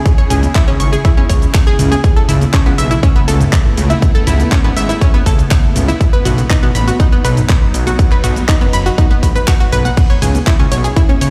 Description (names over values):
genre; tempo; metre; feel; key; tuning
progressive house; 121 BPM; 4/4; straight; unclear; A4 = 440 Hz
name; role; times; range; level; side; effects
evolving wavetable pad; sustained chords; 0.0-11.3 s; C#3 to G#4; -24 LUFS; equal; phaser, built-in reverb, sidechain pumping
deep house drum kit; drums; 0.1-11.3 s; crash cymbal, handclaps, hi-hat, ride cymbal, shaker; -26 LUFS; equal; overdrive, sidechain pumping on hats, sidechain pumping on cymbals, sidechain pumping on perc
electronic kick drum; drums; 0.1-11.1 s; none; -13 LUFS; equal; overdrive
analog pluck; arpeggios; 0.2-11.3 s; B3 to F#6; -22 LUFS; equal; chorus, sidechain pumping, delay
fat analog bass; bass; 0.3-11.3 s; F#1 to C#2; -17 LUFS; equal; sidechain pumping
electronic toms and congas; percussion; 0.3-11.2 s; none; -25 LUFS; equal; sidechain pumping on toms, sidechain pumping on perc
room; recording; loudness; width
little or no reverb; played on a big sound system in a bare room, stone room reverb; -12 LUFS; mono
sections
0.0-11.3 A section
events
none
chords
0.0 C#m; 2.0 Aadd9; 6.0 B; 10.0 C#m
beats
| 0.06 0.55 1.05 1.54 | 2.04 2.54 3.03 3.53 | 4.02 4.52 5.01 5.51 | 6.01 6.50 7.00 7.49 | 7.99 8.48 8.98 9.48 | 9.97 10.47 10.96